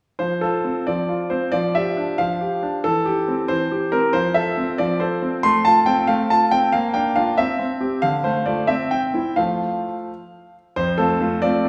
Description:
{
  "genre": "classical-period piano sonatina",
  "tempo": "92 BPM (dotted quarters)",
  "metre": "6/8",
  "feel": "rubato",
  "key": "F major",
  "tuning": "A4 = 440 Hz",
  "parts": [
    { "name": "clear concert grand piano", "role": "solo", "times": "0.2-11.7 s", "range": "F2 to C6", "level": "-20 LUFS", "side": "equal", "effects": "none" }
  ],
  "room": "wet recital hall reverb, RT60 1.6 s",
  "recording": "heard from further back in the room",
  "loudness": "-20 LUFS",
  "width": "mono",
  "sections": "0.2-10.8 A section",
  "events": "none",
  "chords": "0.2 F; 1.5 G5/F; 2.9 C/E; 4.1 F; 5.4 F/A; 6.7 Bb; 7.4 C5; 8.0 Dm; 8.7 C; 9.4 F",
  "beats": "| 0.20 0.87 | 1.54 2.19 | 2.85 3.50 | 4.15 4.80 | 5.45 6.09 | 6.73 7.38 | 8.03 8.70 | 9.39 10.09 | 10.77 11.43"
}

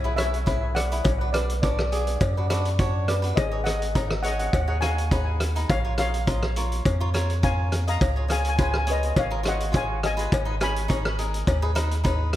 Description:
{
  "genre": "calypso",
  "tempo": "104 BPM",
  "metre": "4/4",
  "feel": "straight",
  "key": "unclear",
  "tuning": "A4 = 441 Hz",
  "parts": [
    { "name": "steel pan", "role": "melody", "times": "0.0-11.2 s", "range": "G#4 to B5", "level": "-29 LUFS", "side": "left 1 dB", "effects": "tape echo" },
    { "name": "cavaquinho", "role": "accompaniment", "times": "0.0-12.3 s", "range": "D4 to D#5", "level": "-32 LUFS", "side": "equal", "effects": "none" },
    { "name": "round analog bass", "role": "bass", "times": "0.0-12.4 s", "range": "G#1 to F#2", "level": "-26 LUFS", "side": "equal", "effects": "none" },
    { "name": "loose indie drum kit", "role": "drums", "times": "0.2-12.4 s", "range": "hi-hat, kick drum, rim click", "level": "-26 LUFS", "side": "equal", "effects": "none" },
    { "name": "cowbell", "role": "percussion", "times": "0.5-12.2 s", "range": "none", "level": "-34 LUFS", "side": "left 5 dB", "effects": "none" }
  ],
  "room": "moderate plate reverb, RT60 2.1 s",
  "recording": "dreamy mix soaked in reverb",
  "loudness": "-22 LUFS",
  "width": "side -13 dB against mid",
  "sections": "0.0-12.4 A section",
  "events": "none",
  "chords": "0.0 E; 1.1 Bm; 3.4 G#7sus4; 5.7 A#m; 8.0 C#7; 10.3 G#m",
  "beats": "0.48 | 1.06 1.64 2.21 2.79 | 3.37 3.95 4.53 5.11 | 5.69 6.27 6.85 7.43 | 8.01 8.59 9.17 9.74 | 10.32 10.90 11.48 12.05"
}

